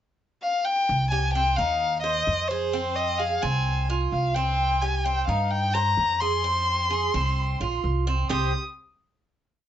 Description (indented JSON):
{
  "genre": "latin, Cuban son and guajira",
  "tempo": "130 BPM",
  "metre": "4/4",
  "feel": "straight",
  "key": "C minor",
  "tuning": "A4 = 441 Hz",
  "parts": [
    { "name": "warm violin", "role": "melody", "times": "0.4-8.5 s", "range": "C5 to Eb6", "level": "-25 LUFS", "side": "left 2 dB", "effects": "none" },
    { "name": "upright bass", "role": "bass", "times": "0.9-8.5 s", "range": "Bb1 to G2", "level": "-27 LUFS", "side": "equal", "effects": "none" },
    { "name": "Cuban tres", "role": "arpeggios", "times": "1.1-8.5 s", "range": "C4 to C5", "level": "-29 LUFS", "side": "right 4 dB", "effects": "slapback echo" }
  ],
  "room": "moderate studio ambience, RT60 0.5 s",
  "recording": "nothing above 7.8 kHz",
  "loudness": "-22 LUFS",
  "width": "side -10 dB against mid",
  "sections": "0.0-0.9 pickup bar; 0.9-8.3 montuno (vamp); 8.3-9.7 final chord",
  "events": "none",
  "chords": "0.0 N.C.; 0.9 Cm; 2.7 Fm; 4.6 Cm; 6.4 Fm; 8.3 C5",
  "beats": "0.43 | 0.89 1.35 1.81 2.28 | 2.74 3.20 3.66 4.13 | 4.59 5.05 5.52 5.98 | 6.44 6.91 7.37 7.83 | 8.30"
}